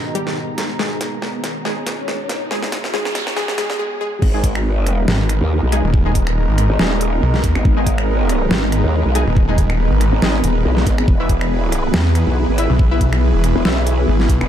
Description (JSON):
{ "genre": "heavy wobble dubstep", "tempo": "140 BPM", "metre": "4/4", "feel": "swing 55% on 16ths, half-time", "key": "G# minor", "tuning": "A4 = 440 Hz", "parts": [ { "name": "wide unison pluck", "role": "melody", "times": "0.0-4.2 s", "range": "G3 to G#4", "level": "-25 LUFS", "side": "left 1 dB", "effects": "auto-pan, tape echo" }, { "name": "supersaw pad", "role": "sustained chords", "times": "0.0-14.5 s", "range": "G#2 to A#5", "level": "-26 LUFS", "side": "right 2 dB", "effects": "sidechain pumping, low-pass filter" }, { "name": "riser and noise sweep", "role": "sound effects", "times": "0.1-4.2 s", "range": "none", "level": "-30 LUFS", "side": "right 2 dB", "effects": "none" }, { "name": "ethereal airy pad", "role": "texture", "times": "0.0-14.5 s", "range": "B3 to A#5", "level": "-26 LUFS", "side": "left 1 dB", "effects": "ensemble chorus, built-in reverb, phaser, sidechain pumping" }, { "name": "dubstep drum kit", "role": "drums", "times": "0.2-14.5 s", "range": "crash cymbal, finger snaps, hi-hat, snare drum", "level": "-22 LUFS", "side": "equal", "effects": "overdrive, high-pass filter on hats, high-pass filter on snare, high-pass filter on toms, high-pass filter on cymbals, high-pass filter on room" }, { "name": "growl bass", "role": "bass", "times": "4.2-14.5 s", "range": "D#1 to D#2", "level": "-17 LUFS", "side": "equal", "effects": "chorus, overdrive" }, { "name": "electronic kick drum", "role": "drums", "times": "4.2-14.4 s", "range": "none", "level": "-16 LUFS", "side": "equal", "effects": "none" }, { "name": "orchestra-hit-like synth stab", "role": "stabs", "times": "4.3-13.8 s", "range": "G#3 to E5", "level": "-26 LUFS", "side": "left 2 dB", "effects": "built-in reverb, tape echo" }, { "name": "snarling distorted saw bass", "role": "bass", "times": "5.1-14.4 s", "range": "D#1 to E2", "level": "-16 LUFS", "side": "equal", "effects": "distortion, overdrive" } ], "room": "light reverb", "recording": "dark, warm production, high-pass filter", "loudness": "-15 LUFS", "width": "side -10 dB against mid", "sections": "0.0-4.2 A section; 4.2-14.5 B section", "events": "build-up 0.0-4.2; drum fill 0.0-3.8; filter sweep on supersaw synth 0.0-4.2; riser 0.1-3.8; noise sweep 2.5-4.2; drop 4.2-14.5", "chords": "0.0 G#madd9; 11.1 E" }